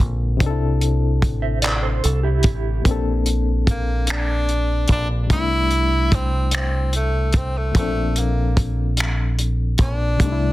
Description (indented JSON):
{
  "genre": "slow six-eight R&B",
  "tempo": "49 BPM (dotted quarters)",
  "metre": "6/8",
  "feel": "straight",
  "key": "unclear",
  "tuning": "A4 = 440 Hz",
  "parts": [
    { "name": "barky reed electric piano", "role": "accompaniment", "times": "0.0-10.5 s", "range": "Bb2 to A4", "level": "-26 LUFS", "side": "left 5 dB", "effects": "overdrive, fast tremolo, plate reverb" },
    { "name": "deep dub fingered electric bass", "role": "bass", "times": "0.0-10.5 s", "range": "A1 to C2", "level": "-20 LUFS", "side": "equal", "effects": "none" },
    { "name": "warm soul drum kit", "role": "drums", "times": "0.4-10.4 s", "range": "finger snaps, handclaps, hi-hat, kick drum", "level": "-19 LUFS", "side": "equal", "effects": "soft clipping on kick, soft clipping on snare" },
    { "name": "mellow electric guitar", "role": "second line", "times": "1.4-2.8 s", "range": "E4 to E5", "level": "-27 LUFS", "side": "right 6 dB", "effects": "tremolo, plate reverb, tape echo" },
    { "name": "clear tenor saxophone", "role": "melody", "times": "3.7-10.5 s", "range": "A3 to E4", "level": "-24 LUFS", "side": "equal", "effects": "plate reverb" }
  ],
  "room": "little or no reverb",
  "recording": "dense, heavily limited modern master",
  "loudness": "-17 LUFS",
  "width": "side -17 dB against mid",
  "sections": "0.0-2.9 A section; 2.9-10.5 B section",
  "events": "tenor saxophone solo 2.9-10.5",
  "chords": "0.4 C6; 2.9 Bbmaj7; 5.3 C6; 7.8 Bbmaj7"
}